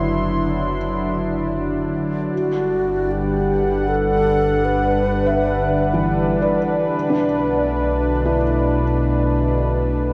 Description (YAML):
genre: ambient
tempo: 78 BPM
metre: 3/4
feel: straight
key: unclear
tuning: A4 = 442 Hz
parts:
  - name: warm analog pad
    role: sustained chords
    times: 0.0-10.1 s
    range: B2 to C6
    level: -23 LUFS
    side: equal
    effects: chorus
  - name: felt-muted upright piano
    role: arpeggios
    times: 0.0-10.1 s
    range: E3 to E5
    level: -27 LUFS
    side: equal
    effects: tape echo
  - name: round analog bass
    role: bass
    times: 0.0-10.1 s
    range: F#1 to B1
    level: -28 LUFS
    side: equal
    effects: none
  - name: organ-like drone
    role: drone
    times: 0.0-10.1 s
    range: D3 to D4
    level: -30 LUFS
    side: equal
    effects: ensemble chorus, built-in reverb
  - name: mellow wooden-headed alto flute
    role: melody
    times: 2.3-6.2 s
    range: F#4 to B4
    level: -24 LUFS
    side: equal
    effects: tape echo
room: wet lush hall reverb, RT60 2.6 s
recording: worn, warbling old tape, cassette tape, warbly pitch drift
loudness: -20 LUFS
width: mono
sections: 0.0-10.1 A section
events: none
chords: 0.0 D7/F#; 2.3 Gmaj7; 6.9 Bm7